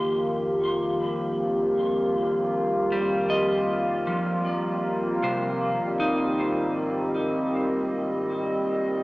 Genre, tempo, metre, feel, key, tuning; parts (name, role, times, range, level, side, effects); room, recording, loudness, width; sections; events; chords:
ambient; 78 BPM; 4/4; straight; A4 = 440 Hz
warbly tape-like pad; sustained chords; 0.0-9.0 s; Eb3 to Eb5; -26 LUFS; equal; chorus, built-in reverb
clean electric guitar; arpeggios; 0.0-7.7 s; C3 to C6; -30 LUFS; equal; diffuse ambient delay
warm chamber double bass section; bass; 0.0-9.0 s; Ab1 to F2; -40 LUFS; equal
analog drone; drone; 0.0-9.0 s; Bb3 to F4; -28 LUFS; equal; chorus
wet lush hall reverb, RT60 2.9 s; small speaker sound; -23 LUFS; side -20 dB against mid
0.0-9.0 A section
fade-out on double bass section 0.0-9.0
0.0 Fsus2; 5.6 Abmaj7